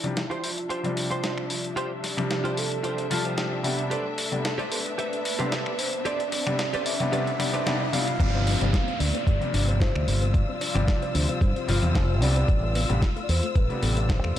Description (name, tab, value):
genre	nu-disco, nu disco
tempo	112 BPM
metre	4/4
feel	swing 53% on 16ths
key	unclear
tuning	A4 = 440 Hz
part	soft octave-layered synth lead	melody	0.0-14.4 s	E4 to F5	-32 LUFS	right 1 dB	chorus, phaser, vintage 12-bit sampler grit, analog delay
part	clear grand piano	accompaniment	0.0-14.4 s	C3 to F4	-30 LUFS	left 1 dB	vintage 12-bit sampler grit, sidechain pumping
part	dark symphonic string section	sustained chords	0.0-14.4 s	D4 to E6	-35 LUFS	left 2 dB	sidechain pumping, low-pass filter
part	dusty soul sampler-style drum kit	drums	0.0-14.4 s	crash cymbal, finger snaps, hi-hat, snare drum	-31 LUFS	equal	high-pass filter on hats, high-pass filter on snare, high-pass filter on cymbals
part	riser and downlifter	sound effects	4.0-12.5 s	none	-36 LUFS	equal	none
part	direct-recorded clean electric guitar	riff	0.3-7.9 s	F4 to A5	-33 LUFS	right 2 dB	ensemble chorus, low-pass filter, tape echo
part	soft round pluck	arpeggios	8.2-14.4 s	G3 to D4	-36 LUFS	left 3 dB	chorus, sidechain pumping, analog delay
part	fingered electric bass with an envelope filter	bass	8.2-14.4 s	F1 to G2	-24 LUFS	equal	none
part	electronic kick drum	drums	8.2-14.2 s	none	-23 LUFS	equal	none
room	light reverb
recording	dark, warm production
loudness	-23 LUFS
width	side -11 dB against mid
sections	0.0-8.2 A section; 8.2-14.4 B section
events	build-up 0.0-8.2; filter sweep on string section 0.0-8.2; clean electric guitar fill 2.8-3.9; riser 4.0-8.2; drop 8.2-14.4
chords	0.0 G7sus4; 3.9 Am11; 8.2 G7sus4; 12.5 Am11